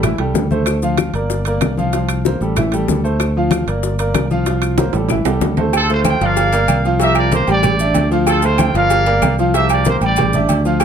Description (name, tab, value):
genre	latin, salsa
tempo	189 BPM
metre	4/4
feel	straight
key	D minor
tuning	A4 = 439 Hz
part	clear concert grand piano	accompaniment	0.0-10.8 s	E3 to G5	-19 LUFS	equal	none
part	fingered electric bass	bass	0.0-10.8 s	G1 to D2	-18 LUFS	equal	none
part	bongos and cowbell	percussion	0.0-10.8 s	none	-24 LUFS	left 7 dB	none
part	claves	percussion	0.0-10.8 s	none	-30 LUFS	left 8 dB	none
part	congas	percussion	0.0-10.8 s	none	-22 LUFS	left 2 dB	none
part	maracas	percussion	0.0-10.8 s	none	-32 LUFS	left 7 dB	none
part	timbales and agogo bells	percussion	0.0-10.8 s	none	-23 LUFS	right 13 dB	none
part	warm trumpet section	melody	5.8-10.6 s	C4 to G5	-17 LUFS	right 2 dB	none
room	light reverb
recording	close, detailed microphones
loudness	-13 LUFS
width	side -8 dB against mid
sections	0.0-5.7 A section; 5.7-10.8 B section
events	drum fill 4.8-5.7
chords	0.0 A7sus4; 0.7 Dm7; 1.3 Gm7; 1.9 C7sus4; 2.6 A7sus4; 3.2 Dm7; 3.8 Gm7; 4.5 C7sus4; 5.1 A7sus4; 5.7 Dm7; 6.4 Gm7; 7.0 C7sus4; 7.6 A7sus4; 8.3 Dm7; 8.9 Gm7; 9.5 C7sus4; 10.2 A7sus4